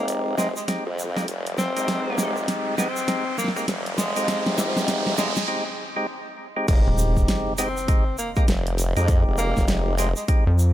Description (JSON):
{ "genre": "glitch hop", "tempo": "100 BPM", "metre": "4/4", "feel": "swing 61% on 16ths", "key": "F minor", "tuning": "A4 = 441 Hz", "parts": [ { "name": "warm tenor saxophone", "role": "melody", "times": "0.0-10.2 s", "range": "F3 to C4", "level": "-30 LUFS", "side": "equal", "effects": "dub echo" }, { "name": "percussive tonewheel organ", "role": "stabs", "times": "0.0-10.4 s", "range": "Ab3 to G4", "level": "-28 LUFS", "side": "equal", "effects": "overdrive, stopped rotary speaker, sidechain pumping, low-pass filter, dub echo" }, { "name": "formant-sweep wobble bass", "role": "bass", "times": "0.0-10.1 s", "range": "Eb1 to F2", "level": "-26 LUFS", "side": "equal", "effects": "chorus, tube saturation, high-pass filter" }, { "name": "riser and impact", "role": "sound effects", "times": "0.2-9.1 s", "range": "none", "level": "-32 LUFS", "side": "right 1 dB", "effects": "none" }, { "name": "pop drum kit", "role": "drums", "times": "0.1-10.4 s", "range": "crash cymbal, hi-hat, snare drum", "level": "-28 LUFS", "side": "equal", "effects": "studio reverb" }, { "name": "tube shaker", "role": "percussion", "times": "0.1-10.7 s", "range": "none", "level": "-34 LUFS", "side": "right 1 dB", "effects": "none" }, { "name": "electronic kick drum", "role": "drums", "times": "0.7-10.4 s", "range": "none", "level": "-21 LUFS", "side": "equal", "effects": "high-pass filter on kick, studio reverb" }, { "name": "rubbery square bass", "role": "bass", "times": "6.9-10.7 s", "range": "Eb1 to F2", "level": "-18 LUFS", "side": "equal", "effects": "none" } ], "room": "light reverb, digital ambience", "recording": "none", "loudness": "-21 LUFS", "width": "side -13 dB against mid", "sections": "0.0-6.7 A section; 6.7-10.7 B section", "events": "build-up 0.0-6.7; drum fill 0.0-5.5; riser 0.2-5.5; break 5.5-6.7; drop 6.7-10.7; impact 6.7-9.1", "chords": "0.0 Fm7" }